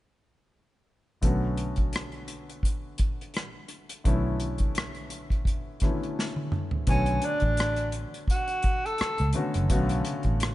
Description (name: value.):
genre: R&B, neo-soul.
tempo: 85 BPM.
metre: 4/4.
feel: swing 55% on 16ths.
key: B minor.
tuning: A4 = 440 Hz.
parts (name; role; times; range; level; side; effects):
warm baby grand piano; accompaniment; 1.2-10.5 s; C#3 to C#5; -33 LUFS; left 2 dB; none.
vintage muted fingered electric bass; bass; 1.2-10.5 s; F#1 to C#2; -29 LUFS; equal; none.
unplugged drum kit; drums; 1.2-10.5 s; hi-hat, kick drum, rim click, snare drum, toms; -28 LUFS; equal; none.
breathy tenor saxophone; melody; 6.9-9.4 s; C#4 to A4; -29 LUFS; equal; slapback echo.
room: light reverb.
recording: nothing above 11.0 kHz.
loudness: -25 LUFS.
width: side -16 dB against mid.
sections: 1.2-6.9 A section; 6.9-10.5 B section.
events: drum fill 6.2-6.9.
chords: 1.2 Bm9.